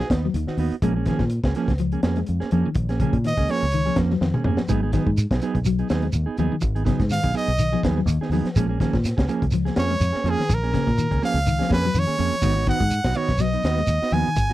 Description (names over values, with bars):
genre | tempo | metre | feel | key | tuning
afrobeat | 124 BPM | 4/4 | swing 55% on 16ths | G# dorian | A4 = 440 Hz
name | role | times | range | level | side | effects
brilliant trumpet | melody | 0.0-0.1, 3.3-4.0, 7.1-14.5 s | G#4 to G#5 | -24 LUFS | right 2 dB | none
clean electric guitar | arpeggios | 0.0-14.5 s | C#3 to G#3 | -27 LUFS | left 6 dB | none
mellow electric guitar | stabs | 0.0-14.5 s | D#3 to G#4 | -26 LUFS | right 6 dB | none
crunchy breakbeat drum kit | drums | 0.0-14.5 s | hi-hat, kick drum, snare drum, toms | -26 LUFS | equal | none
fingered electric bass | bass | 0.1-14.5 s | G#1 to A#2 | -24 LUFS | equal | none
shekere | percussion | 4.7-14.5 s | none | -26 LUFS | right 2 dB | none
room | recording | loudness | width
little or no reverb | dry, close 1970s-style studio recording | -19 LUFS | side -15 dB against mid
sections
0.0-14.5 A section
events
trumpet solo 0.0-14.5; drum fill 4.2-4.7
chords
0.0 G#m7 (rootless); 0.8 A#m7; 4.7 G#m7; 8.6 A#m7; 12.4 G#m7